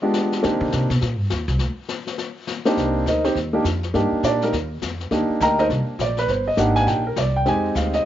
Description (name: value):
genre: jazz piano trio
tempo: 205 BPM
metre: 4/4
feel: swing 61% on 8ths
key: C minor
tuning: A4 = 440 Hz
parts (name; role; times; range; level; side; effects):
- warm concert grand piano; melody; 0.0-8.1 s; Ab3 to Bb5; -19 LUFS; right 1 dB; none
- jazz brush drum kit; drums; 0.1-8.1 s; brushed snare drum, hi-hat, kick drum, snare drum; -30 LUFS; left 6 dB; none
- upright bass; bass; 0.4-8.0 s; G1 to Eb3; -24 LUFS; equal; none
room: light reverb, small room ambience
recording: 1960s-style stereo, nothing above 7.5 kHz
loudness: -19 LUFS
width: side -12 dB against mid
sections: 0.0-2.8 A section; 2.8-8.1 B section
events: upright bass solo 0.0-2.8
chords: 0.4 Cm7; 1.6 N.C.; 2.8 Cm7; 7.5 Fm7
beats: 0.14 | 0.43 0.72 1.01 1.31 | 1.60 1.89 2.18 2.48 | 2.77 3.06 3.35 3.65 | 3.94 4.23 4.53 4.82 | 5.11 5.41 5.70 5.99 | 6.29 6.58 6.88 7.17 | 7.46 7.76 8.05